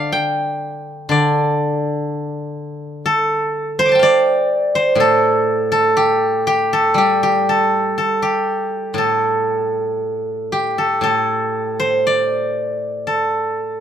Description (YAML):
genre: chinese traditional, Chinese solo plucked strings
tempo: 57-63 BPM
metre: 4/4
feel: rubato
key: D yu mode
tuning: A4 = 442 Hz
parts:
  - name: steel-string zither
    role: solo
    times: 0.0-13.8 s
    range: A2 to D6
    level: -15 LUFS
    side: equal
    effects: none
room: light reverb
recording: band playing live in one room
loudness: -15 LUFS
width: side -9 dB against mid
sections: 0.0-13.8 A section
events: none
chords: none